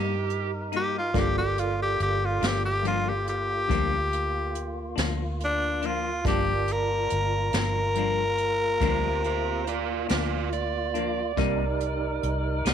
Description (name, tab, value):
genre	slow blues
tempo	47 BPM (dotted quarters)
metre	12/8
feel	straight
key	G minor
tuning	A4 = 440 Hz
part	overdriven slide guitar	second line	0.0-0.5, 8.8-12.7 s	F4 to D5	-32 LUFS	right 12 dB	none
part	clean electric guitar	accompaniment	0.0-12.7 s	G2 to Eb4	-32 LUFS	left 16 dB	tremolo
part	overdriven tine electric piano	accompaniment	0.0-12.7 s	Eb4 to A5	-36 LUFS	right 13 dB	medium tremolo
part	tonewheel organ	sustained chords	0.0-12.7 s	Bb3 to Bb4	-35 LUFS	equal	slow rotary speaker
part	vintage muted fingered electric bass	bass	0.0-12.7 s	G1 to G2	-30 LUFS	equal	none
part	jazz brush drum kit	drums	0.3-12.7 s	hi-hat, kick drum, snare drum	-30 LUFS	equal	none
part	growling tenor saxophone	melody	0.8-10.1 s	D4 to Bb4	-26 LUFS	left 1 dB	none
room	light reverb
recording	1960s-style stereo with parts hard left and right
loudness	-24 LUFS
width	side -8 dB against mid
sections	0.0-12.7 A section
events	none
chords	0.0 Cm7 (rootless); 1.1 Gm7; 11.4 Cm7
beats	| 1.14 2.42 3.70 4.98 | 6.25 7.53 8.81 10.09 | 11.37 12.65